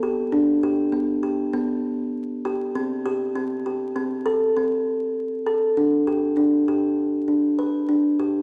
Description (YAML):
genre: contemporary instrumental, contemporary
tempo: 99 BPM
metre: 5/4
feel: straight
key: unclear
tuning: A4 = 440 Hz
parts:
  - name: kalimba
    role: solo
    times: 0.0-8.4 s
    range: B3 to B4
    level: -23 LUFS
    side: equal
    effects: none
room: wet scoring stage reverb, RT60 1.6 s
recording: vinyl crackle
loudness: -23 LUFS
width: mono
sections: 0.0-5.8 A section; 5.8-8.4 B section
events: none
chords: none